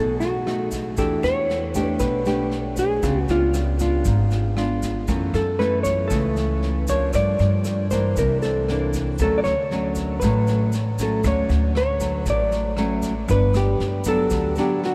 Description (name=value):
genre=bossa nova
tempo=117 BPM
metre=4/4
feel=straight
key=D major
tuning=A4 = 438 Hz
part: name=hollow-body jazz guitar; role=melody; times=0.0-14.9 s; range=E#4 to D5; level=-26 LUFS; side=equal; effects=none
part: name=nylon-string guitar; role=accompaniment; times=0.0-14.9 s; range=F#2 to G4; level=-27 LUFS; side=equal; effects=none
part: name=upright bass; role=bass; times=0.0-14.6 s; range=G1 to G2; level=-27 LUFS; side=equal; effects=none
part: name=vintage brush drum kit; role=drums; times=0.2-14.9 s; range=kick drum, rim click, snare drum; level=-33 LUFS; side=equal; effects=none
part: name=tube shaker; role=percussion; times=0.2-14.8 s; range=none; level=-43 LUFS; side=equal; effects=none
room=moderate huge ambient reverb, RT60 7.8 s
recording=in a vast, echoing space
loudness=-22 LUFS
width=mono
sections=0.0-13.3 A section; 13.3-14.9 B section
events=none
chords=0.0 B7; 1.0 Em7; 3.0 C#7b9; 5.1 F#m7; 7.1 Gm7; 8.2 C9; 9.2 Dmaj7; 13.3 Gmaj7